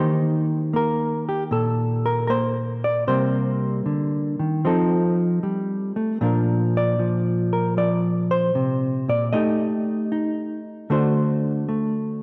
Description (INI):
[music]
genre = solo jazz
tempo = 77 BPM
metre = 4/4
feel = swing 68% on 8ths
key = unclear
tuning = A4 = 441 Hz
[part]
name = hollow-body jazz guitar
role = solo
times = 0.0-12.2 s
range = Bb2 to Eb5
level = -22 LUFS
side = equal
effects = none
[sound]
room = wet lush hall reverb, RT60 1.9 s, digital ambience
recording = dreamy mix soaked in reverb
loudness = -22 LUFS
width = mono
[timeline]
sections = 0.0-12.2 A section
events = none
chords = 0.0 Eb6; 3.1 Cm7; 4.6 F7; 6.2 Bb; 9.3 Eb; 10.9 D7